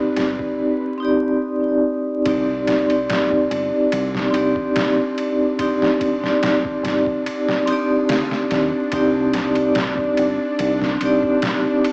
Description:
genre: trip hop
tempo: 72 BPM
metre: 4/4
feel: straight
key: C minor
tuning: A4 = 440 Hz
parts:
  - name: vibraphone with medium mallets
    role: accompaniment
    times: 0.0-11.9 s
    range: C4 to D5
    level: -20 LUFS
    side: equal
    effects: tremolo, cassette tape, tape echo
  - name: bowed-like drone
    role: texture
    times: 0.0-11.9 s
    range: D4 to B4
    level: -32 LUFS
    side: equal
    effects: built-in reverb, cassette tape
  - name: deep dub fingered electric bass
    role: bass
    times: 0.2-11.2 s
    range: G1 to Eb2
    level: -34 LUFS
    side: equal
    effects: none
  - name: trip hop sampler-style drum kit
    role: drums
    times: 0.2-11.9 s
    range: kick drum, ride cymbal, snare drum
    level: -29 LUFS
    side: equal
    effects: cassette tape
room: moderate spring reverb, RT60 2.5 s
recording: home recording on cassette, vinyl crackle, small speaker sound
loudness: -20 LUFS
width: mono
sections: 0.0-2.3 A section; 2.3-11.9 B section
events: none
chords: 0.0 Cmadd9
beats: 0.59 1.42 | 2.26 3.09 3.92 4.76 | 5.59 6.42 7.26 8.09 | 8.92 9.76 10.59 11.42

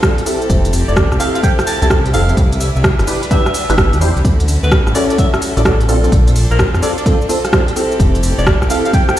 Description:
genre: UK garage, two-step garage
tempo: 128 BPM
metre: 4/4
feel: swing 65% on 16ths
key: unclear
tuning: A4 = 440 Hz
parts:
  - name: rich chamber violin section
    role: sustained chords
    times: 0.0-9.2 s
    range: C4 to B4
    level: -26 LUFS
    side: equal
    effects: sidechain pumping
  - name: percussive organ stab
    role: stabs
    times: 0.0-9.2 s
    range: C4 to C5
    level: -19 LUFS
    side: equal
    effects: ensemble chorus, tape echo
  - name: electronic kick drum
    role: drums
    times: 0.0-9.1 s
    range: none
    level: -15 LUFS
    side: equal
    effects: none
  - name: garage drum kit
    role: drums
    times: 0.0-9.2 s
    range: cabasa, hi-hat, rim click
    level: -19 LUFS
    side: equal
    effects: none
  - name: dark detuned saw bass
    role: bass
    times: 0.5-8.7 s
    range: F1 to F2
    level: -14 LUFS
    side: equal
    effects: none
  - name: growling alto saxophone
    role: melody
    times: 0.9-9.2 s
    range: Bb4 to A5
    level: -21 LUFS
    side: equal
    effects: vintage 12-bit sampler grit, tape echo
room: light reverb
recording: played on a big sound system in a bare room, stone room reverb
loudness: -11 LUFS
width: side -13 dB against mid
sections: 0.0-9.2 A section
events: none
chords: 0.3 Fmaj9; 2.4 Cmaj9; 4.2 Dmaj9; 5.9 Bbmaj9; 7.8 Fmaj9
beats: 0.03 | 0.50 0.96 1.43 1.90 | 2.37 2.84 3.31 3.78 | 4.25 4.71 5.18 5.65 | 6.12 6.59 7.06 7.53 | 8.00 8.46 8.93

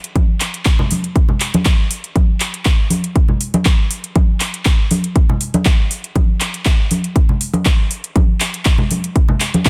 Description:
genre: house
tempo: 120 BPM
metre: 4/4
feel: swing 53% on 16ths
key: none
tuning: none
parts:
  - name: house drum kit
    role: drums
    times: 0.0-9.7 s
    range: handclaps, hi-hat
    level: -23 LUFS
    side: equal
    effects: none
  - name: electronic kick drum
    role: drums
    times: 0.2-9.7 s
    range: none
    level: -16 LUFS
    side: equal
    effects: none
  - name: congas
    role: percussion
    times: 0.2-9.6 s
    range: none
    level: -22 LUFS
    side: equal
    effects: none
room: little or no reverb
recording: dense, heavily limited modern master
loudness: -16 LUFS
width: mono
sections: 0.0-9.7 A section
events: none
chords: none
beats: | 0.16 0.66 1.16 1.66 | 2.16 2.66 3.16 3.66 | 4.16 4.66 5.16 5.66 | 6.16 6.66 7.16 7.66 | 8.16 8.66 9.16 9.66

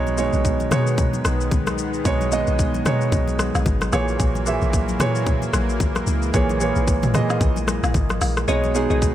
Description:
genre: amapiano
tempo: 112 BPM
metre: 4/4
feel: swing 58% on 16ths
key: B major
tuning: A4 = 440 Hz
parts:
  - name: warm grand piano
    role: accompaniment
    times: 0.0-9.1 s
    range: A#2 to E5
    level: -23 LUFS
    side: right 3 dB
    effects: none
  - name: lush unison pad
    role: sustained chords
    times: 0.0-9.1 s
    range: D#3 to B3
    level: -28 LUFS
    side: left 2 dB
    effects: chorus
  - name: deep log drum bass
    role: bass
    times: 0.0-9.1 s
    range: G#1 to B2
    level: -24 LUFS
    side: equal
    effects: none
  - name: organic electronic drum kit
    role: drums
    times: 0.1-9.1 s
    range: hi-hat, kick drum, rim click, shaker, snare drum, toms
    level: -23 LUFS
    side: left 1 dB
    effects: none
  - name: congas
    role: percussion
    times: 0.1-8.7 s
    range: none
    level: -31 LUFS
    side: left 4 dB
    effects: none
  - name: glassy wavetable pluck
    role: stabs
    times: 8.5-9.0 s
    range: G#4 to D#5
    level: -26 LUFS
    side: left 4 dB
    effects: chorus, digital delay
room: digital ambience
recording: none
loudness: -18 LUFS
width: side -12 dB against mid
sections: 0.0-9.1 A section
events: kick muted 8.5-9.0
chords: 0.0 B69; 3.9 F#9/A#; 8.5 B69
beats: 0.45 0.98 1.52 | 2.05 2.59 3.12 3.66 | 4.20 4.73 5.27 5.80 | 6.34 6.87 7.41 7.95 | 8.48 9.02

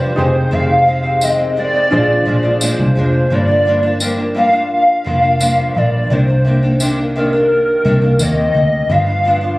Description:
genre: indie pop, bedroom pop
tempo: 86 BPM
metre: 4/4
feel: straight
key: unclear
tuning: A4 = 440 Hz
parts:
  - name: hollow clarinet-like synth lead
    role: melody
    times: 0.0-9.6 s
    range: Bb4 to F5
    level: -15 LUFS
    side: equal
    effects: ensemble chorus, digital delay
  - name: nylon-string guitar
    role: accompaniment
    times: 0.0-9.6 s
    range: F2 to D4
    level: -20 LUFS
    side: left 1 dB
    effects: lush chorus, vibrato effect
  - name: warbly lo-fi synth keys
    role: accompaniment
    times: 0.0-3.3 s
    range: D4 to C5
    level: -19 LUFS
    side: right 1 dB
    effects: chorus
  - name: vintage muted fingered electric bass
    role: bass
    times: 0.0-9.6 s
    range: F1 to Eb2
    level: -16 LUFS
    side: equal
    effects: none
  - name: tambourine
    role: percussion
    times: 1.2-8.4 s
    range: none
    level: -22 LUFS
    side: equal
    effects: none
room: light reverb, small room ambience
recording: recorded on a phone in the room, club reverb, compression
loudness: -12 LUFS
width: side -20 dB against mid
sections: 0.0-3.3 A section; 3.3-9.6 A section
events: none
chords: 0.2 Fm7; 1.9 Bb7; 3.3 Gm7; 6.1 Cm9; 8.9 G7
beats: | 0.53 1.22 1.92 2.62 | 3.32 4.01 4.71 5.41 | 6.11 6.80 7.50 8.20 | 8.89

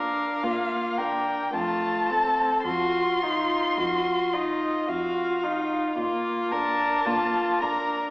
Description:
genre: classical, slow romantic movement for string quartet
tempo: 55 BPM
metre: 3/4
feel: rubato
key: Bb major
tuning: A4 = 440 Hz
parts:
  - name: muted violin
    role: melody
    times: 0.0-8.1 s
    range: Eb5 to C6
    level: -27 LUFS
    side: left 1 dB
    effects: none
  - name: muted violin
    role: second line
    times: 0.0-8.1 s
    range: F4 to Bb4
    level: -27 LUFS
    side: equal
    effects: none
  - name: muted viola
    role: accompaniment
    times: 0.0-8.1 s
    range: A3 to F4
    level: -28 LUFS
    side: equal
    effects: none
  - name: muted cello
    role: bass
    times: 0.0-8.0 s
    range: F2 to Bb2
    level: -38 LUFS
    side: equal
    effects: none
room: wet recital hall reverb, RT60 1.5 s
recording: heard from further back in the room, small speaker sound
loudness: -23 LUFS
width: side -24 dB against mid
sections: 0.0-8.1 A section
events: none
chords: 0.0 Bb; 1.5 F; 2.7 F5; 6.0 Bb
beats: 0.43 1.53 | 2.65 3.78 4.88 | 5.97 7.05

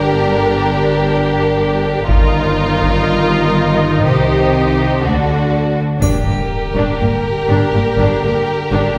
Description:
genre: cinematic, epic orchestral film score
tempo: 122 BPM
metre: 4/4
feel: straight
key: G minor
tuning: A4 = 440 Hz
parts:
  - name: rich studio violin section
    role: melody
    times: 0.0-9.0 s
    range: A4 to C5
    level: -25 LUFS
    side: equal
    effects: none
  - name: rich studio violin section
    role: second line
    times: 0.0-9.0 s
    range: F4 to G4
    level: -22 LUFS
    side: equal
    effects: none
  - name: rich symphonic viola section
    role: accompaniment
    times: 0.0-8.9 s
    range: Bb3 to Eb4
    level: -23 LUFS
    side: equal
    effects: none
  - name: mellow French horn section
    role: sustained chords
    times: 0.0-9.0 s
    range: D3 to Bb4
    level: -22 LUFS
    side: equal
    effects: none
  - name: rich symphonic cello section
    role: bass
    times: 0.0-8.8 s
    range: G2 to D3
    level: -24 LUFS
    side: equal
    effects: none
  - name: rich symphonic double bass section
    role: bass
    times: 0.0-9.0 s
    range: G1 to D2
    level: -21 LUFS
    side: equal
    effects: none
  - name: taiko ensemble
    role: drums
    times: 2.1-3.1, 6.0-7.0 s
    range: none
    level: -20 LUFS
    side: equal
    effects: none
  - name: triangle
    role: percussion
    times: 6.0-7.0 s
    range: none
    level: -37 LUFS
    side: equal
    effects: none
  - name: impact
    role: sound effects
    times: 6.0-8.0 s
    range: none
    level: -27 LUFS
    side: equal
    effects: none
room: wet recital hall reverb, RT60 1.5 s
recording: heard from further back in the room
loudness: -15 LUFS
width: mono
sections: 0.0-6.0 A section; 6.0-9.0 B section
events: impact 6.0-8.0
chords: 0.0 Gm; 2.1 Ebadd9/G; 4.1 Cm; 5.0 D; 6.0 Gm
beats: | 0.13 0.62 1.11 1.60 | 2.09 2.58 3.07 3.56 | 4.05 4.54 5.03 5.52 | 6.01 6.50 7.00 7.49 | 7.98 8.47 8.96

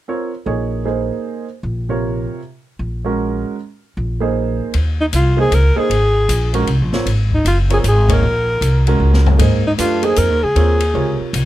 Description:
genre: modal jazz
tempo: 155 BPM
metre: 3/4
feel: swing 64% on 8ths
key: Eb dorian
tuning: A4 = 440 Hz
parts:
  - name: warm concert grand piano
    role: accompaniment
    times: 0.1-11.5 s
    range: C3 to Db5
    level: -20 LUFS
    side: right 4 dB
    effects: none
  - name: upright bass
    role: bass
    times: 0.5-11.5 s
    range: Gb1 to Ab2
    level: -16 LUFS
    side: equal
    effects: none
  - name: open jazz drum kit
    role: drums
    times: 4.7-11.4 s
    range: hi-hat, kick drum, ride cymbal, snare drum, toms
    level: -23 LUFS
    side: left 3 dB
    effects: none
  - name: breathy alto saxophone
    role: melody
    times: 5.0-11.2 s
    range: Eb4 to Bb4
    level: -17 LUFS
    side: left 1 dB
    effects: none
room: little or no reverb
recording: close, detailed microphones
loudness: -14 LUFS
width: side -14 dB against mid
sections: 0.1-4.7 A section; 4.7-11.5 B section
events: band accent 8.0; drum fill 9.0-9.4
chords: 0.1 Eb13sus4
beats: | 0.08 0.47 0.85 | 1.24 1.63 2.02 | 2.41 2.80 3.19 | 3.57 3.96 4.35 | 4.74 5.13 5.51 | 5.90 6.29 6.68 | 7.07 7.45 7.84 | 8.23 8.62 9.00 | 9.39 9.78 10.17 | 10.55 10.94 11.33

